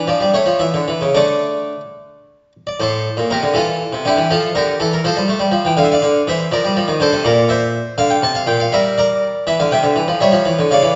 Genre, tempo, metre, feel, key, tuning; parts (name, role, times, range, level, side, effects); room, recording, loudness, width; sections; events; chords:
classical, baroque-style suite movement for harpsichord; 72-84 BPM (dotted quarters); 6/8; rubato; A4 = 438 Hz
harpsichord; solo; 0.0-10.9 s; A2 to A5; -16 LUFS; equal
wet recital hall reverb, RT60 1.3 s; nothing above 7.7 kHz; -16 LUFS; mono
0.0-2.8 A section; 2.8-11.0 A section
0.3 A; 1.2 D5; 2.8 Bbmaj13/A; 3.5 C/E; 4.3 F; 5.8 Dm9; 6.5 F7; 7.2 Bb; 8.7 Em7b5/G; 10.2 C#dim